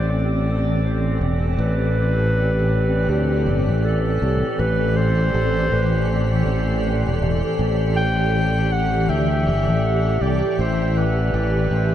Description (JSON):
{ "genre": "ambient dub", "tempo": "80 BPM", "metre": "4/4", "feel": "swing 59% on 16ths", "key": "A minor", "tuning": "A4 = 439 Hz", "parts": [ { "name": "warm clarinet", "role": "melody", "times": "0.0-11.9 s", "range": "G4 to G5", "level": "-24 LUFS", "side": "equal", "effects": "dub echo" }, { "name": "granular cloud pad", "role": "sustained chords", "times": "0.0-11.9 s", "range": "A2 to D5", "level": "-23 LUFS", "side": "equal", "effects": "built-in reverb" }, { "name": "fingered electric bass", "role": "bass", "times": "0.0-11.9 s", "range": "E1 to D2", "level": "-20 LUFS", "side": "equal", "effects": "none" } ], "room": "light reverb", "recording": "dark, warm production", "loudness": "-17 LUFS", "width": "side -11 dB against mid", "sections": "0.0-11.9 A section", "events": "none", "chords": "0.0 Am11" }